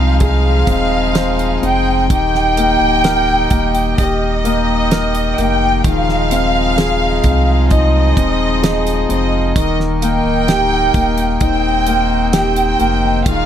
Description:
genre	pop ballad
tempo	64 BPM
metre	4/4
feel	straight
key	unclear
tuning	A4 = 441 Hz
part	rich studio violin section	melody	0.0-13.5 s	Eb5 to G5	-17 LUFS	right 1 dB	none
part	clear concert grand piano	accompaniment	0.0-13.5 s	Eb3 to C5	-19 LUFS	left 6 dB	none
part	pedal harmonium	sustained chords	0.0-13.5 s	Eb3 to G4	-21 LUFS	right 2 dB	none
part	warm sub bass	bass	0.0-13.5 s	D1 to C2	-18 LUFS	right 1 dB	none
part	damped 70s drum kit	drums	0.2-13.5 s	hi-hat, kick drum, snare drum	-17 LUFS	right 1 dB	none
room	small room ambience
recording	none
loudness	-12 LUFS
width	side -10 dB against mid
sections	0.0-13.5 A section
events	none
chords	0.0 Fm7; 2.1 Ebmaj7; 5.8 Fm7/Eb; 9.6 Cm7

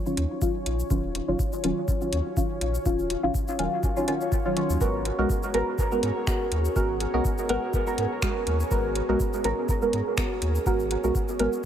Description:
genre	dub techno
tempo	123 BPM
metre	4/4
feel	swing 54% on 16ths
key	unclear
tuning	A4 = 441 Hz
part	deep dark ambient pad	sustained chords	0.0-11.7 s	Cb4 to Db5	-34 LUFS	equal	chorus, built-in reverb, sidechain pumping
part	bubbling stepped-filter texture	texture	0.0-11.7 s	Db4 to Db5	-40 LUFS	left 2 dB	chorus, built-in reverb, sidechain pumping
part	deep mellow chord stab	stabs	0.1-11.6 s	Eb3 to Bb4	-26 LUFS	equal	chorus, phaser, sidechain pumping, dub echo
part	deep house drum kit	drums	0.1-11.6 s	finger snaps, hi-hat, shaker	-35 LUFS	left 1 dB	overdrive
part	warm sub bass	bass	0.2-11.5 s	Eb1 to Ab2	-28 LUFS	equal	sidechain pumping
part	electronic kick drum	drums	0.4-11.3 s	none	-28 LUFS	equal	overdrive
room	light reverb, digital ambience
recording	none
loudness	-23 LUFS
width	side -9 dB against mid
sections	0.0-11.7 A section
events	none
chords	0.0 Ebm9; 4.8 Abm9

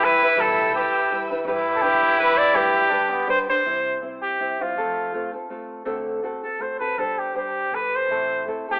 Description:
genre	mexican folk, mariachi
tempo	162 BPM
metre	3/4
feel	swing 54% on 8ths, rubato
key	G major, C major from 3.6 s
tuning	A4 = 440 Hz
part	bright trumpet	melody	0.0-8.8 s	F4 to D5	-21 LUFS	equal	none
part	dark trumpet	second line	0.0-3.3 s	B3 to E4	-22 LUFS	equal	cassette tape
part	nylon-string guitar	accompaniment	0.0-8.8 s	A2 to C5	-27 LUFS	equal	cassette tape
part	warm symphonic violin section	sustained chords	0.0-3.6 s	B4 to E6	-32 LUFS	equal	cassette tape
part	upright bass	bass	0.4-8.6 s	G1 to G2	-45 LUFS	equal	none
room	moderate spring reverb, RT60 3.1 s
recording	home recording on cassette, telephone sound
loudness	-19 LUFS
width	side -39 dB against mid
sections	0.0-3.6 A section; 3.6-8.8 B section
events	none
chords	0.0 Em; 1.5 G; 3.6 C; 4.8 F; 5.9 D7; 7.0 Gsus4; 7.7 Gadd9; 8.1 Am

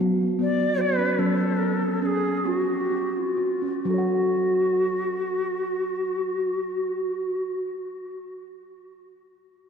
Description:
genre	world meditative, meditative tuned percussion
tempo	40-52 BPM (dotted quarters)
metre	6/8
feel	straight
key	F# minor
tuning	A4 = 440 Hz
part	steel tongue drum	arpeggios	0.0-7.8 s	F#3 to F#5	-25 LUFS	right 1 dB	ping-pong delay
part	Native American-style cedar flute	melody	0.4-7.6 s	F#4 to D5	-25 LUFS	left 1 dB	ping-pong delay
room	wet lush hall reverb, RT60 2.6 s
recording	dreamy mix soaked in reverb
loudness	-22 LUFS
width	side -6 dB against mid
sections	0.0-3.9 A section; 3.9-6.8 B section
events	slowing down 0.0-3.9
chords	0.0 B5; 1.2 F#m

